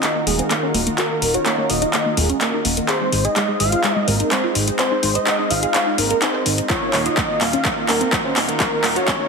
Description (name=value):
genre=progressive house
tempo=126 BPM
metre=4/4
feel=straight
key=Eb dorian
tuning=A4 = 436 Hz
part: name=wide unison lead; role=melody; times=0.0-9.3 s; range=Ab4 to F5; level=-22 LUFS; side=equal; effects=sidechain pumping, tape echo
part: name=lush unison pad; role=sustained chords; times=0.0-9.3 s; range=Eb3 to Bb4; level=-26 LUFS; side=right 1 dB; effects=chorus, sidechain pumping
part: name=wide unison pluck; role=arpeggios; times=0.0-9.3 s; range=Ab3 to C5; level=-24 LUFS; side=equal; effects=auto-pan, sidechain pumping, tape echo
part: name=deep house drum kit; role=drums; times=0.0-9.2 s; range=handclaps, hi-hat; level=-20 LUFS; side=equal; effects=overdrive, small room ambience, sidechain pumping on hats
part: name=fat analog bass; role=bass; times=0.3-9.0 s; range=Eb1 to Ab1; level=-24 LUFS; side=equal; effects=sidechain pumping
part: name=electronic kick drum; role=drums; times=6.7-9.2 s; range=none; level=-26 LUFS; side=left 1 dB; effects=small room ambience
part: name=riser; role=sound effects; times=6.7-9.3 s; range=none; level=barely audible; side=none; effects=none
room=moderate recital hall reverb, RT60 1.5 s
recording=dense, heavily limited modern master, high-pass filter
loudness=-16 LUFS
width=side -4 dB against mid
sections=0.0-9.3 A section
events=build-up 0.0-9.3; drum fill 0.0-9.3; filter sweep on synth pluck 0.0-9.3; filter sweep on analog synth lead 0.0-9.3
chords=0.0 Ebmadd9; 2.9 Ab; 6.7 Ebmadd9